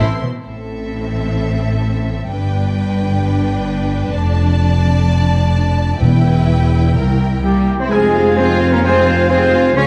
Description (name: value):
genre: cinematic, heroic adventure film score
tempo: 129 BPM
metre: 4/4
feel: straight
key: A minor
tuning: A4 = 440 Hz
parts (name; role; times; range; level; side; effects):
- warm symphonic violin section; melody; 0.0-9.9 s; E5 to C6; -29 LUFS; equal; none
- rich symphonic violin section; second line; 0.0-9.9 s; Bb3 to D5; -30 LUFS; equal; none
- warm symphonic viola section; accompaniment; 0.0-9.9 s; E3 to Ab4; -27 LUFS; equal; none
- mellow French horn section; sustained chords; 0.0-0.2, 7.4-9.9 s; E3 to Db5; -19 LUFS; equal; none
- warm trumpet; stabs; 0.0-0.2, 7.4-9.9 s; G4 to Db5; -25 LUFS; equal; none
- rich symphonic cello section; bass; 0.0-9.8 s; C2 to Db4; -20 LUFS; equal; none
- warm symphonic double bass section; bass; 0.0-9.9 s; E1 to F2; -21 LUFS; equal; none
- timpani; percussion; 6.0-6.7 s; E2; -20 LUFS; equal; none
- silver concert flute; second line; 7.4-9.9 s; none; barely audible; none; none
- bright oboe; second line; 7.9-9.9 s; Ab5; -27 LUFS; equal; none
- clear clarinet; second line; 7.9-9.9 s; F4; -27 LUFS; equal; none
- warm trombone section; sustained chords; 7.9-9.9 s; F3 to C4; -29 LUFS; equal; none
- mellow tuba; bass; 7.9-9.9 s; F1 to Db2; -23 LUFS; equal; none
room: moderate scoring stage reverb, RT60 1.9 s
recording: dark, warm production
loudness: -15 LUFS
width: mono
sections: 0.5-7.9 A section; 7.9-9.9 B section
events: none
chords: 0.5 Am; 2.3 G; 4.2 Dm/F; 6.0 Em; 7.0 C7; 7.9 Fm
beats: | 0.47 0.93 1.39 1.86 | 2.32 2.78 3.24 3.70 | 4.16 4.62 5.08 5.54 | 6.01 6.48 6.96 7.44 | 7.92 8.39 8.85 9.31 | 9.77